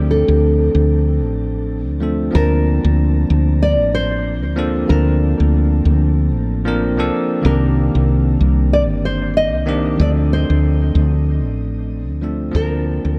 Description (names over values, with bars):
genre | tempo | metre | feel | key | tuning
sunset chillout | 94 BPM | 4/4 | swing 57% on 16ths | unclear | A4 = 440 Hz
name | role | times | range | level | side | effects
bell-like tine electric piano | accompaniment | 0.0-13.2 s | Eb3 to A5 | -22 LUFS | equal | shimmer reverb, dub echo
woody fretless electric bass | bass | 0.0-13.2 s | G1 to D2 | -18 LUFS | equal | none
nylon-string guitar | melody | 0.1-13.2 s | A4 to Eb5 | -24 LUFS | equal | shimmer reverb, dub echo
room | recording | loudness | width
light reverb, small room ambience | echo-heavy mix | -16 LUFS | mono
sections
0.0-13.2 A section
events
fade-out 10.8-13.2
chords
0.0 Dm7; 2.3 Bbmaj9/A; 7.4 Cm7; 10.0 Dm7; 12.6 Bbmaj9